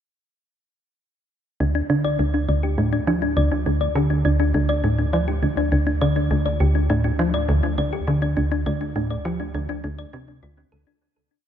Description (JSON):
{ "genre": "ambient, sequencer-driven space music", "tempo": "102 BPM", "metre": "4/4", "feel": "straight", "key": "D minor", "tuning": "A4 = 440 Hz", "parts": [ { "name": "thumb-piano-like synth pluck", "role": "arpeggios", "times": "1.6-11.0 s", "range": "C4 to D5", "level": "-24 LUFS", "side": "left 1 dB", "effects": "chorus, auto-pan, tape echo, shimmer reverb" }, { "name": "tight sequencer bass", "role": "riff", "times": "1.6-10.9 s", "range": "D2 to F3", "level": "-21 LUFS", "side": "equal", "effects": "lush chorus, tape echo" }, { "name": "warm sub bass", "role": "bass", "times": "1.6-11.0 s", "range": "D2", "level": "-27 LUFS", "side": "equal", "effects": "none" } ], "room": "moderate plate reverb, RT60 3.0 s", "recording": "dreamy mix soaked in reverb, nothing above 8.0 kHz", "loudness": "-19 LUFS", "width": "side -9 dB against mid", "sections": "1.6-11.0 A section", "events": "fade-out 7.9-11.0", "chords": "1.6 Dm", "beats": "| 1.60 2.19 2.78 3.37 | 3.96 4.54 5.13 5.72 | 6.31 6.90 7.49 8.07 | 8.66 9.25 9.84 10.43" }